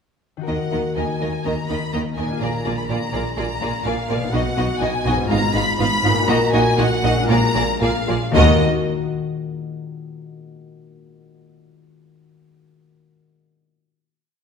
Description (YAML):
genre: classical, dramatic, fast romantic movement for symphony orchestra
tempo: 112-126 BPM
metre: 4/4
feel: straight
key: Eb minor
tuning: A4 = 440 Hz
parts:
  - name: concert harp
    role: arpeggios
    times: 0.4-8.6 s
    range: Ab2 to Eb5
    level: -24 LUFS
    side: left 5 dB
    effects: none
  - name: rich symphonic violin section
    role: melody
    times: 0.5-8.6 s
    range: Eb5 to Cb6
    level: -24 LUFS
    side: left 2 dB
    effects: none
  - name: rich symphonic violin section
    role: second line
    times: 0.5-8.6 s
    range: F4 to F5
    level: -27 LUFS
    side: equal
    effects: none
  - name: dark symphonic viola section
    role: accompaniment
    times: 0.5-8.6 s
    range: Bb3 to Gb4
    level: -25 LUFS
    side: right 2 dB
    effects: none
  - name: rich symphonic cello section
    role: bass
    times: 0.5-8.6 s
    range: Eb2 to Eb3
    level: -25 LUFS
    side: right 2 dB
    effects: none
  - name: warm studio double bass section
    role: bass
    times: 0.5-8.6 s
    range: Ab1 to Eb2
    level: -26 LUFS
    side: right 3 dB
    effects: none
room: wet scoring stage reverb, RT60 1.5 s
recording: minimal, uncompressed stereo recording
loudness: -17 LUFS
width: side -6 dB against mid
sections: 0.5-8.3 A section; 8.3-10.4 final chord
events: slowing down 3.4-8.3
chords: 0.5 Ebm; 2.4 Bb7; 4.3 B; 5.3 Fm7b5/Ab; 6.3 Ebm/Bb; 7.3 Bb7; 8.3 Ebm